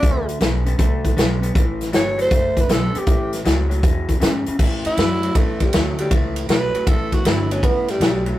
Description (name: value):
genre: electric blues shuffle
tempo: 158 BPM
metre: 4/4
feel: swing 67% on 8ths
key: A mixolydian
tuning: A4 = 440 Hz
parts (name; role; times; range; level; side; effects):
- growling tenor saxophone; melody; 0.0-8.3 s; G3 to C#5; -22 LUFS; right 1 dB; none
- electric guitar through a small old amp; riff; 0.0-8.4 s; E2 to B3; -26 LUFS; left 1 dB; none
- upright bass; bass; 0.0-8.4 s; F#1 to A2; -24 LUFS; equal; none
- natural country drum kit; drums; 0.0-8.3 s; crash cymbal, hi-hat, kick drum, ride cymbal, snare drum; -19 LUFS; equal; none
room: light reverb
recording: rough rehearsal-room recording, tube saturation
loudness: -16 LUFS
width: side -14 dB against mid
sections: 0.0-4.6 A section; 4.6-8.4 B section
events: tenor saxophone solo 4.6-8.4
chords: 0.0 D5; 1.6 A5; 2.3 D; 3.1 A; 3.8 E; 4.6 A5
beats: | 0.03 0.41 0.79 1.17 | 1.55 1.94 2.31 2.70 | 3.08 3.46 3.84 4.22 | 4.59 4.97 5.35 5.73 | 6.11 6.49 6.87 7.25 | 7.63 8.01